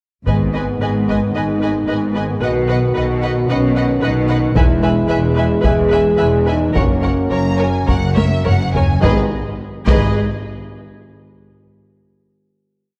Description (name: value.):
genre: cinematic, epic orchestral film score.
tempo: 105-112 BPM.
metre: 4/4.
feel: straight.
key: G# minor.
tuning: A4 = 439 Hz.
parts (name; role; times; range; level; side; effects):
clear symphonic violin section; melody; 0.3-10.2 s; D#5 to A#5; -30 LUFS; equal; none.
rich chamber violin section; second line; 0.3-10.2 s; B4 to E5; -29 LUFS; equal; none.
clear symphonic viola section; accompaniment; 0.3-10.2 s; G#4 to B4; -30 LUFS; equal; none.
bright trombone section; sustained chords; 0.3-9.3 s; D#3 to B3; -26 LUFS; equal; none.
warm French horn section; sustained chords; 0.3-9.3 s; G#3 to G#4; -23 LUFS; equal; none.
rich studio cello section; bass; 0.3-10.2 s; E2 to B2; -23 LUFS; equal; none.
rich symphonic double bass section; bass; 0.3-10.2 s; E1 to B1; -23 LUFS; equal; none.
taiko ensemble; drums; 0.3-11.0 s; none; -21 LUFS; equal; none.
timpani; percussion; 0.3-1.0, 9.0-10.1 s; G#2; -27 LUFS; equal; none.
room: moderate scoring stage reverb, RT60 2.0 s.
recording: dark, warm production.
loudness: -16 LUFS.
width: mono.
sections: 0.3-9.0 theme; 9.0-11.3 final chord.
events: drum fill 8.2-9.0.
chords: 0.3 G#m; 2.4 B; 4.6 E; 6.8 F#; 9.0 G#m.